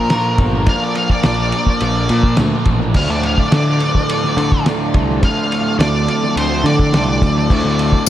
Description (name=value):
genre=psychedelic rock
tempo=105 BPM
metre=4/4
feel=straight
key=D minor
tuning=A4 = 440 Hz
part: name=octave-fuzz lead guitar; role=melody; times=0.0-8.0 s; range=Bb4 to F5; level=-20 LUFS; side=equal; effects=distortion, tape echo
part: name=rich studio string section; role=sustained chords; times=0.0-8.1 s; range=F3 to Bb4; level=-26 LUFS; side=right 2 dB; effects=none
part: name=fuzz guitar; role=riff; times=0.0-8.1 s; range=D2 to Bb3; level=-19 LUFS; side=equal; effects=distortion, phaser, tape echo
part: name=fuzz picked electric bass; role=bass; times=0.0-7.9 s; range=G1 to D3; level=-18 LUFS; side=equal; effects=overdrive
part: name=cloth-damped thuddy drum kit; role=drums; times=0.1-8.1 s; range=crash cymbal, kick drum, ride cymbal, snare drum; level=-18 LUFS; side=equal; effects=tape echo
room=small room ambience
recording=echo-heavy mix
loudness=-13 LUFS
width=side -12 dB against mid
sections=0.0-8.1 A section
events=lead electric guitar solo 0.0-8.1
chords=0.0 Bb; 3.0 Dm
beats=0.10 | 0.67 1.24 1.81 2.38 | 2.95 3.52 4.09 4.66 | 5.23 5.80 6.37 6.94 | 7.50 8.07